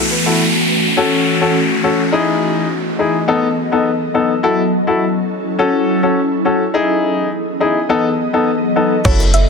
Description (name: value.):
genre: dancehall.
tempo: 104 BPM.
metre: 4/4.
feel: straight.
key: unclear.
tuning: A4 = 440 Hz.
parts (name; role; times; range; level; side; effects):
ethereal airy pad; sustained chords; 0.0-9.5 s; E3 to D#5; -18 LUFS; equal; ensemble chorus, built-in reverb, sidechain pumping.
downlifter; sound effects; 0.0-4.4 s; none; -19 LUFS; left 1 dB; none.
warm grand piano; accompaniment; 0.3-9.2 s; B3 to A4; -16 LUFS; left 4 dB; none.
soft round pluck; melody; 9.0-9.4 s; C#5 to E5; -23 LUFS; right 2 dB; chorus, digital delay.
island pop drum kit; drums; 9.0-9.5 s; crash cymbal, hi-hat, kick drum, shaker; -17 LUFS; equal; overdrive, vintage 12-bit sampler grit.
clean 808-style bass; bass; 9.1-9.5 s; F#1; -13 LUFS; equal; none.
bongos; percussion; 9.1-9.3 s; none; -30 LUFS; right 4 dB; none.
room: light reverb, digital ambience.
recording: dense, heavily limited modern master.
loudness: -13 LUFS.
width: side -5 dB against mid.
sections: 0.0-9.1 A section.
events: none.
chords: 0.0 F#m7; 2.1 Emaj7; 3.3 B7; 4.4 F#m7; 6.7 Emaj7; 7.9 B7.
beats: 0.40 0.97 1.55 | 2.13 2.70 3.28 3.86 | 4.43 5.01 5.59 6.17 | 6.74 7.32 7.90 8.47 | 9.05.